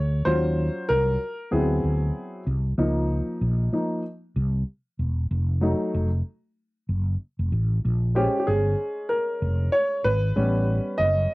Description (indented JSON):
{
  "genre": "hip hop",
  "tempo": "95 BPM",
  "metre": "4/4",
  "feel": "swing 60% on 16ths",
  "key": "unclear",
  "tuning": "A4 = 442 Hz",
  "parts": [
    { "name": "warm grand piano", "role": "accompaniment", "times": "0.0-11.3 s", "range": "F3 to Eb5", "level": "-24 LUFS", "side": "equal", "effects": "none" },
    { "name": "mellow fretless electric bass", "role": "bass", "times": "0.0-11.3 s", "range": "E1 to Eb2", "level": "-23 LUFS", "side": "equal", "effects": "transformer saturation" }
  ],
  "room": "light reverb",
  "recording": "home recording on cassette",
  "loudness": "-22 LUFS",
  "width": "side -21 dB against mid",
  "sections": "0.0-11.3 A section",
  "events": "grand piano solo 0.0-11.3",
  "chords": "0.3 Ebm9; 1.5 D13; 2.8 Db6; 5.3 F7b9; 7.8 Bbm9; 10.4 A9"
}